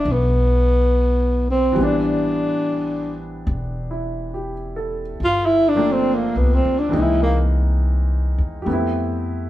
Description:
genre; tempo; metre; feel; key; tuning
jazz ballad; 70 BPM; 4/4; swing 67% on 8ths; unclear; A4 = 440 Hz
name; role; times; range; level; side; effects
breathy tenor saxophone; melody; 0.0-7.4 s; Bb3 to F4; -18 LUFS; equal; none
warm concert grand piano; accompaniment; 0.0-9.5 s; E3 to B4; -25 LUFS; equal; none
upright bass; bass; 0.0-9.5 s; E1 to F2; -21 LUFS; equal; none
room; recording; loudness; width
moderate large studio reverb, RT60 0.9 s; band playing live in one room; -17 LUFS; side -14 dB against mid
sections
0.0-9.5 A section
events
tenor saxophone solo 0.0-9.5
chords
0.0 E7; 1.8 Am11; 5.2 Gm11; 6.9 C7alt; 8.7 Fmaj9#11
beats
0.06 0.91 | 1.76 2.61 3.47 4.33 | 5.19 6.05 6.92 7.79 | 8.66

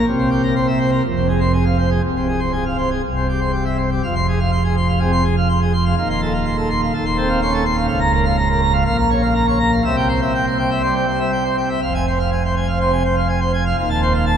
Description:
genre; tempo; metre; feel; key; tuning
classical, organ toccata; 123 BPM; 4/4; straight; F minor; A4 = 438 Hz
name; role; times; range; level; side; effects
pipe organ, plenum; solo; 0.0-14.4 s; C1 to C6; -16 LUFS; right 1 dB; none
room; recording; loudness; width
wet cathedral reverb, RT60 6.3 s; recorded in a church or concert hall; -16 LUFS; side -8 dB against mid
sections
0.0-4.0 A section; 4.0-14.4 B section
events
none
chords
0.1 C7; 1.0 Fm; 2.0 Fm/C; 3.0 C; 4.0 Fm; 6.0 F7/Eb; 7.9 Bbm/Db; 8.9 Bbm; 9.8 C; 11.8 Fm; 13.8 F7/Eb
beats
| 0.07 0.56 1.05 1.54 | 2.04 2.54 3.04 3.53 | 4.03 4.52 5.01 5.49 | 5.98 6.46 6.94 7.42 | 7.90 8.38 8.87 9.35 | 9.85 10.34 10.84 11.33 | 11.82 12.31 12.80 13.29 | 13.78 14.26

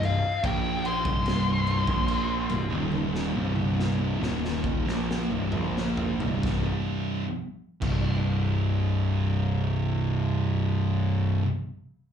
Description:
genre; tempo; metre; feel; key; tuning
stoner and doom metal; 65-74 BPM; 4/4; straight; C minor; A4 = 436 Hz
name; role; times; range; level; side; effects
fuzz lead guitar; melody; 0.0-5.5 s; F5 to C6; -29 LUFS; left 3 dB; distortion, slapback echo, tape echo
thick fuzz guitar; riff; 0.0-11.5 s; C2 to Bb3; -30 LUFS; left 6 dB; distortion, slapback echo
thick fuzz guitar; riff; 0.0-11.5 s; C2 to Bb3; -30 LUFS; right 8 dB; distortion
fuzz picked electric bass; bass; 0.0-11.4 s; C1 to Bb1; -29 LUFS; equal; overdrive
raw garage drum kit; drums; 0.0-8.1 s; crash cymbal, kick drum, snare drum, toms; -32 LUFS; equal; none
room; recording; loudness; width
light reverb; live gig heard through the venue's PA, club reverb; -24 LUFS; side -8 dB against mid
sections
0.0-6.4 A section; 6.4-10.1 B section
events
slowing down 0.0-6.4; drum fill 2.9-6.4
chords
0.0 Cm; 6.4 C5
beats
0.44 1.26 2.08 | 2.92 3.77 4.64 5.53 | 6.44 7.36 8.28 9.20

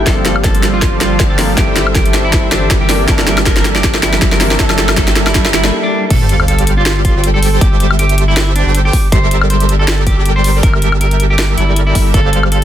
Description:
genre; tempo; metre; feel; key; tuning
future bass; 159 BPM; 4/4; swing 55% on 16ths, half-time; G dorian; A4 = 438 Hz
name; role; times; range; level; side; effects
bright grand piano; accompaniment; 0.0-6.1 s; E3 to A5; -21 LUFS; left 3 dB; sidechain pumping, digital delay
big bright polysynth; riff; 0.0-12.6 s; G3 to G5; -18 LUFS; right 1 dB; wide subtle chorus, sidechain pumping
saturated sub bass; bass; 0.0-12.6 s; G1; -15 LUFS; equal; sidechain pumping
riser and sub drop; sound effects; 1.0-7.6 s; none; -22 LUFS; equal; none
electric guitar at the edge of break-up; melody; 0.1-12.6 s; D4 to C5; -20 LUFS; right 1 dB; sidechain pumping, digital delay
electronic kick drum; drums; 0.1-12.2 s; none; -14 LUFS; equal; small room ambience
trap drum kit; drums; 0.1-12.6 s; crash cymbal, hi-hat, snare drum, woodblock; -16 LUFS; left 1 dB; small room ambience
room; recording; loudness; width
light reverb, digital ambience; dense, heavily limited modern master; -9 LUFS; side -11 dB against mid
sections
0.0-6.1 A section; 6.1-12.6 B section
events
build-up 0.0-6.1; drum fill 0.0-5.7; riser 1.0-5.7; break 5.7-6.1; drop 6.1-12.6; impact 6.1-7.6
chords
0.1 Bbmaj9/G; 1.6 C13/G; 4.6 Gm69; 6.1 G9sus4; 7.6 Am7/G; 8.9 Gm69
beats
| 0.07 0.44 0.82 1.20 | 1.58 1.95 2.33 2.71 | 3.08 3.46 3.84 4.22 | 4.59 4.97 5.35 5.73 | 6.10 6.48 6.86 7.24 | 7.61 7.99 8.37 8.75 | 9.12 9.50 9.88 10.26 | 10.63 11.01 11.39 11.77 | 12.14 12.52

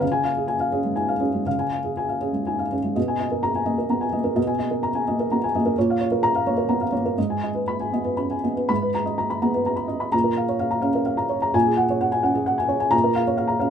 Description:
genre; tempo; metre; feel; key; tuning
neoclassical minimalist piano; 115-134 BPM; 3/4; rubato; G# dorian; A4 = 440 Hz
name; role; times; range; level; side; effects
felt-muted upright piano; solo; 0.0-13.7 s; G#2 to B5; -20 LUFS; equal; none
room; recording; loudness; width
moderate studio ambience, RT60 0.5 s; minimal, uncompressed stereo recording; -20 LUFS; side -8 dB against mid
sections
0.0-8.7 A section; 8.7-13.7 B section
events
none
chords
0.0 C#; 3.0 G#madd9/B; 5.8 A#m; 7.2 G#m; 8.7 G#madd9; 10.1 A#m; 11.5 F#add9/A#; 12.9 A#m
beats
| 0.02 0.48 0.96 | 1.46 1.95 2.46 | 2.96 3.44 3.90 | 4.37 4.83 5.30 | 5.76 6.21 6.67 | 7.17 7.67 8.19 | 8.70 9.19 9.66 | 10.13 10.60 11.06 | 11.54 12.01 12.47 | 12.93 13.38

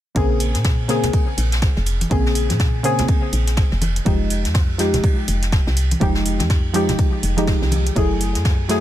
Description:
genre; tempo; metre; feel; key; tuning
deep house; 123 BPM; 4/4; swing 60% on 16ths; Bb dorian; A4 = 440 Hz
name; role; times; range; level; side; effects
deep mellow chord stab; stabs; 0.1-8.8 s; Db3 to Ab4; -22 LUFS; left 1 dB; chorus, ping-pong delay
woody FM bass; bass; 0.2-8.8 s; F1 to Bb2; -21 LUFS; equal; sidechain pumping
electronic hi-hat; drums; 0.2-8.8 s; none; -28 LUFS; right 1 dB; none
electronic kick drum; drums; 0.2-8.6 s; none; -18 LUFS; equal; none
jazz brush drum kit; drums; 0.2-8.8 s; ride cymbal, snare drum; -29 LUFS; right 1 dB; high-pass filter on cymbals, high-pass filter on snare, high-pass filter on room
congas; percussion; 1.0-7.8 s; none; -26 LUFS; equal; none
room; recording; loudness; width
small room ambience; none; -16 LUFS; side -12 dB against mid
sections
0.2-8.8 A section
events
none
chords
0.2 Bbm9; 4.1 Fm9; 8.0 Gbm9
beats
| 0.16 0.65 1.13 1.62 | 2.11 2.60 3.09 3.57 | 4.06 4.55 5.04 5.53 | 6.01 6.50 6.99 7.48 | 7.96 8.45

